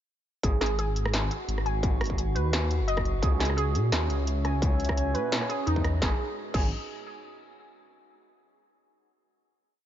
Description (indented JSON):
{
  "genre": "half-time drum and bass",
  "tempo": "172 BPM",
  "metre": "4/4",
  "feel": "swing 54% on 16ths, half-time",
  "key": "G# minor",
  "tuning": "A4 = 441 Hz",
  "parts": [
    { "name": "warbly dusty pluck", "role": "arpeggios", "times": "0.4-6.7 s", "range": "D#4 to G#5", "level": "-34 LUFS", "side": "right 1 dB", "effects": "wide subtle chorus, vintage 12-bit sampler grit, digital delay" },
    { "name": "dark detuned saw bass", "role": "bass", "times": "0.4-6.7 s", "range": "F#1 to A#2", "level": "-28 LUFS", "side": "equal", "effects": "none" },
    { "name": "electronic kick drum", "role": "drums", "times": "0.4-6.6 s", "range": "none", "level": "-28 LUFS", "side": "equal", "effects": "distortion" },
    { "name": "industrial drum kit", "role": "drums", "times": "0.4-6.6 s", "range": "crash cymbal, hi-hat, rim click, snare drum", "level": "-32 LUFS", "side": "equal", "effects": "none" },
    { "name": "metallic inharmonic drone", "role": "texture", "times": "1.0-6.0 s", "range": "F#4", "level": "-38 LUFS", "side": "right 5 dB", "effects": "chorus, built-in reverb" },
    { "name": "dark analog pad", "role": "sustained chords", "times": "3.7-7.4 s", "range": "G#3 to G#5", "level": "-35 LUFS", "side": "equal", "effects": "chorus, phaser, sidechain pumping" }
  ],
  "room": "light reverb",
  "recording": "nothing above 7.5 kHz",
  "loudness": "-25 LUFS",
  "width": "side -11 dB against mid",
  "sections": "0.4-6.0 drop; 6.0-7.4 final chord",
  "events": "drop 0.4-6.0; band accent 5.8",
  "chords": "0.4 G#m; 3.2 C#m; 6.0 G#m"
}